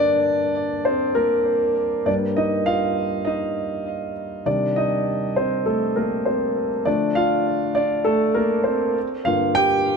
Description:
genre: pop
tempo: 100 BPM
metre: 4/4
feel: straight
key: G minor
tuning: A4 = 440 Hz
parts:
  - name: dark concert grand piano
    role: solo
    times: 0.0-10.0 s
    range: G2 to G5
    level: -19 LUFS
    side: equal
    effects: digital delay
room: moderate plate reverb, RT60 2.6 s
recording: none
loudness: -19 LUFS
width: side -5 dB against mid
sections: 0.0-10.0 A section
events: grand piano solo 0.0-10.0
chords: 0.0 Gm; 2.1 Eb/G; 4.5 Cmadd9; 6.9 Dm; 9.0 Gm

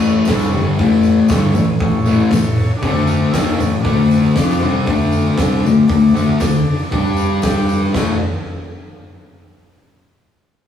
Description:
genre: garage rock duo or trio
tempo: 117 BPM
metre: 4/4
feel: straight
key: A major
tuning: A4 = 441 Hz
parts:
  - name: overdriven combo organ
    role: sustained chords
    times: 0.0-8.2 s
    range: D4 to A5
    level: -25 LUFS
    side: left 2 dB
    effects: phaser
  - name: fuzz guitar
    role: riff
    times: 0.0-8.2 s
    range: G2 to G4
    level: -14 LUFS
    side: left 2 dB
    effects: distortion
  - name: tambourine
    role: percussion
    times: 0.0-8.2 s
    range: none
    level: -37 LUFS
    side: left 4 dB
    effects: none
  - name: oversized low-tuned drum kit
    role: drums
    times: 0.3-8.1 s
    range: hi-hat, kick drum, snare drum, splash cymbal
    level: -20 LUFS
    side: equal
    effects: none
room: moderate studio reverb, RT60 0.6 s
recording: rough rehearsal-room recording, small room ambience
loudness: -13 LUFS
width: side -9 dB against mid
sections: 0.0-7.9 A section; 7.9-10.0 B section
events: transistor combo organ fill 2.8-3.8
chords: 0.0 A; 2.8 D5; 3.3 A; 3.8 D5; 6.9 G5; 7.9 A

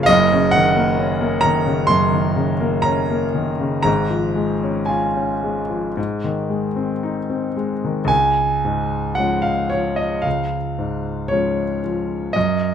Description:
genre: classical, romantic nocturne for solo piano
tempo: 55-68 BPM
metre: 4/4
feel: rubato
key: Db major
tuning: A4 = 440 Hz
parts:
  - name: clear grand piano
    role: solo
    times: 0.0-12.7 s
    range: Gb1 to C6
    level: -17 LUFS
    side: equal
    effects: none
room: moderate large studio reverb, RT60 0.8 s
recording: none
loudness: -17 LUFS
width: side -8 dB against mid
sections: 0.0-8.1 A section; 8.1-12.7 B section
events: none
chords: 0.1 Ebm7/Gb; 3.9 Db/Ab; 6.0 Ab; 8.1 Db

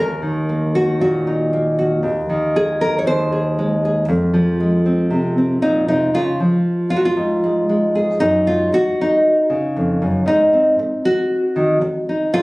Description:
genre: folk, solo fingerstyle acoustic guitar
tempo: 117 BPM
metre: 4/4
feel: straight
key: unclear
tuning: A4 = 442 Hz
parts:
  - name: nylon-string guitar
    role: solo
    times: 0.0-12.4 s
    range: Eb2 to Db5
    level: -15 LUFS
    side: equal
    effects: none
room: light reverb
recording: recorded on a phone in the room, club reverb, compression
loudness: -15 LUFS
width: side -23 dB against mid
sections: 0.0-8.2 A section; 8.2-12.4 B section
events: none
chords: 0.0 Ebm; 2.0 Ab/Eb; 4.1 Fm; 6.1 Db; 8.2 Gb5; 10.3 Ab

